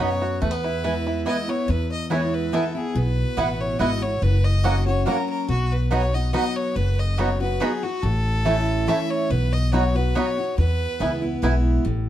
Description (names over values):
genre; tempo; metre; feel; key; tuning
bluegrass; 142 BPM; 3/4; straight; E major; A4 = 439 Hz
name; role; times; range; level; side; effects
clear fiddle; melody; 0.0-11.4 s; F#4 to E5; -28 LUFS; equal; none
picked steel-string acoustic guitar; accompaniment; 0.0-12.1 s; E2 to F#4; -26 LUFS; left 1 dB; none
bluegrass banjo; arpeggios; 0.0-11.5 s; A3 to F#4; -28 LUFS; right 1 dB; none
mandolin; stabs; 0.0-11.5 s; A3 to B5; -28 LUFS; right 5 dB; none
upright bass; bass; 0.4-12.1 s; F#1 to E2; -22 LUFS; equal; none
room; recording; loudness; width
light reverb; dark, warm production; -20 LUFS; side -12 dB against mid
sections
0.0-1.7 A section; 1.7-11.9 A section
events
none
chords
0.4 E; 3.0 Bsus4; 4.2 F#; 5.5 B; 8.0 A; 9.3 B; 10.6 E